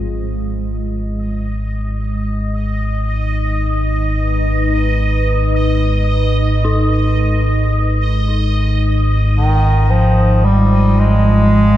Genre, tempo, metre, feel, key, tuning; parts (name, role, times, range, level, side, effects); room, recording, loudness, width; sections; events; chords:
dark ambient drone; free time; G# minor; A4 = 440 Hz
deep dark ambient pad; sustained chords; 0.0-11.8 s; G#3 to B4; -23 LUFS; equal; chorus, built-in reverb
deep rumbling drone; drone; 0.0-11.8 s; G#1 to G#2; -15 LUFS; equal; built-in reverb, phaser, lush chorus
bubbling stepped-filter texture; texture; 1.1-11.8 s; D#5; -24 LUFS; right 1 dB; chorus, built-in reverb
dark detuned synth bell; arpeggios; 6.6-11.8 s; D#4; -28 LUFS; left 1 dB; chorus, diffuse ambient delay
clear bass clarinet; melody; 9.4-11.8 s; D#3 to Ab3; -14 LUFS; equal
wet cathedral reverb, RT60 5.4 s; -13 LUFS; side -13 dB against mid
0.1-11.8 A section
fade-out on ambient pad 0.1-11.8; fade-out on synth bell 0.1-11.8
0.1 G#m; 8.8 Fm